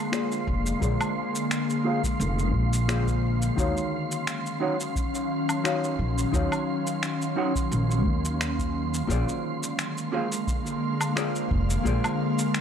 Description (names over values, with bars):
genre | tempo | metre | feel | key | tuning
sunset chillout | 87 BPM | 4/4 | swing 53% on 16ths | Eb dorian | A4 = 440 Hz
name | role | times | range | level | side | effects
ethereal airy pad | sustained chords | 0.0-12.6 s | D3 to F5 | -29 LUFS | left 1 dB | ensemble chorus, built-in reverb
wind-like tuned noise texture | texture | 0.0-12.6 s | C6 | -36 LUFS | right 7 dB | built-in reverb
vintage hollow-body jazz guitar | accompaniment | 0.1-12.6 s | Eb3 to Gb5 | -31 LUFS | moving between left 5 dB and right 4 dB | auto-pan, low-pass filter, tape echo
electronic finger snaps, shaker and woodblock | drums | 0.1-12.6 s | none | -32 LUFS | equal | none
upright bass | bass | 0.5-12.0 s | F1 to Eb2 | -26 LUFS | equal | none
electronic kick drum | drums | 0.5-12.0 s | none | -30 LUFS | equal | none
room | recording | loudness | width
light reverb, digital ambience | dry, gritty hardware recording | -24 LUFS | side -8 dB against mid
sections
0.0-12.6 A section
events
filter sweep on hollow-body jazz guitar 0.0-12.6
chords
0.0 Bb7; 3.6 Ebm9; 9.1 Bb7